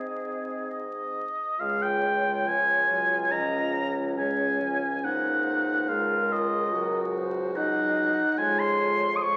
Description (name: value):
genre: classical, slow romantic movement for wind quintet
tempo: 67-73 BPM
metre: 4/4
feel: rubato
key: Db major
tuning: A4 = 439 Hz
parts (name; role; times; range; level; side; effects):
- mellow hollow concert flute; melody; 0.0-9.4 s; Bb4 to Eb5; -36 LUFS; equal; none
- clear oboe; second line; 0.0-9.4 s; Ab4 to Eb6; -28 LUFS; equal; none
- clear clarinet; accompaniment; 0.0-9.4 s; C4 to Gb4; -35 LUFS; equal; none
- dark French horn; accompaniment; 0.0-9.4 s; F3 to C4; -37 LUFS; equal; none
- warm bassoon; bass; 0.0-9.4 s; Db2 to Ab2; -38 LUFS; equal; none
room: wet recital hall reverb, RT60 1.5 s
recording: very old 78 rpm record, vinyl crackle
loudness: -26 LUFS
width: mono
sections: 0.0-1.6 A section; 1.6-9.4 B section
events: none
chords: 0.0 Ab; 1.6 Db; 5.0 Ab7/Db; 8.4 Db/F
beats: 0.71 | 1.60 2.46 3.32 4.18 | 5.05 5.89 6.73 7.55 | 8.38 9.22